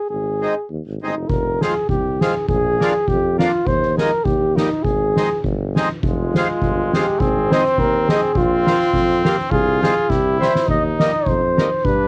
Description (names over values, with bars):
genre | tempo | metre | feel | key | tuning
alpine folk, alpine dance band | 102 BPM | 2/4 | swing 54% on 8ths | Ab major, F minor from 6.0 s | A4 = 440 Hz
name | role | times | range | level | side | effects
mellow flugelhorn | melody | 0.0-12.1 s | Eb4 to Eb5 | -22 LUFS | equal | cassette tape
warm tuba | bass | 0.1-12.1 s | F1 to G2 | -26 LUFS | equal | none
accordion | accompaniment | 0.4-11.7 s | G3 to F4 | -23 LUFS | equal | cassette tape
soft-mallet drum kit | drums | 1.3-12.0 s | kick drum, snare drum | -24 LUFS | equal | cassette tape
mellow trumpet | second line | 6.0-12.1 s | Ab3 to F4 | -26 LUFS | equal | cassette tape
room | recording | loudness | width
light reverb | home recording on cassette | -18 LUFS | mono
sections
0.0-6.0 A section; 6.0-12.1 B section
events
drum fill 10.1-10.7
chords
0.1 Ab; 1.3 Fm; 2.5 Bb7; 3.7 Ebsus4; 4.3 Eb; 4.8 Ab; 6.0 Fm; 7.2 Ab; 8.4 Bbsus2; 9.5 Fm/C; 10.1 C; 10.7 Eb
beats
| 0.10 0.70 | 1.29 1.89 | 2.49 3.08 | 3.67 4.26 | 4.85 5.44 | 6.04 6.62 | 7.20 7.78 | 8.36 8.93 | 9.51 10.09 | 10.68 11.26 | 11.84